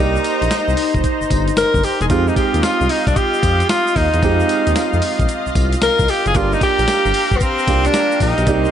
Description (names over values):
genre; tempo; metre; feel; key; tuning
R&B, new jack swing; 113 BPM; 4/4; swing 66% on 16ths; F dorian; A4 = 440 Hz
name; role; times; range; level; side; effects
bright tenor saxophone; melody; 0.0-8.7 s; B3 to Bb4; -18 LUFS; left 1 dB; tape echo
clear concert grand piano; accompaniment; 0.0-8.7 s; Ab3 to D5; -23 LUFS; right 8 dB; none
lush unison pad; sustained chords; 0.0-8.7 s; Eb4 to C6; -22 LUFS; equal; chorus
smooth gliding synth bass; bass; 0.0-8.7 s; E1 to F2; -20 LUFS; left 1 dB; none
dusty soul sampler-style drum kit; drums; 0.2-8.6 s; hi-hat, kick drum, snare drum, tambourine; -21 LUFS; left 1 dB; none
egg shaker; percussion; 0.2-8.7 s; none; -37 LUFS; right 7 dB; none
room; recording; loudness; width
light reverb, digital ambience; nothing above 10.6 kHz; -14 LUFS; side -9 dB against mid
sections
0.0-8.7 A section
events
none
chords
0.0 Cm7; 2.1 Fm7; 6.3 Gm7